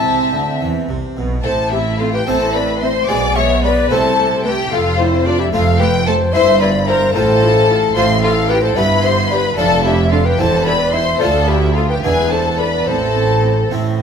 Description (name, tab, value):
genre	classical, baroque-style concerto movement with solo episodes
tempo	73 BPM (dotted quarters)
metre	6/8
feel	straight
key	A minor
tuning	A4 = 438 Hz
part	mellow hollow concert flute	melody	0.0-13.7 s	E4 to A5	-18 LUFS	left 1 dB	none
part	warm symphonic violin section	melody	0.0-13.7 s	C5 to D6	-20 LUFS	left 4 dB	none
part	rich chamber violin section	second line	0.0-13.7 s	C4 to E5	-19 LUFS	left 4 dB	none
part	harpsichord	accompaniment	0.0-14.0 s	D2 to A4	-25 LUFS	right 2 dB	none
part	rich chamber viola section	accompaniment	0.0-14.0 s	G#3 to G4	-26 LUFS	right 3 dB	none
part	rich chamber double bass section	bass	0.0-14.0 s	E1 to E2	-21 LUFS	right 3 dB	none
part	warm chamber cello section	bass	0.0-14.0 s	D2 to E3	-21 LUFS	right 2 dB	none
room	wet recital hall reverb, RT60 1.7 s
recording	minimal, uncompressed stereo recording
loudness	-12 LUFS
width	side -7 dB against mid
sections	0.0-1.4 A section; 1.4-14.0 A section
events	none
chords	0.0 Am; 3.1 G#dim/B; 3.9 Am/C; 4.7 F; 6.3 Edim/G; 7.1 F/A; 8.8 Em/G; 9.6 Dm/F; 10.4 C/E; 11.2 Dm; 12.0 E5; 12.9 Am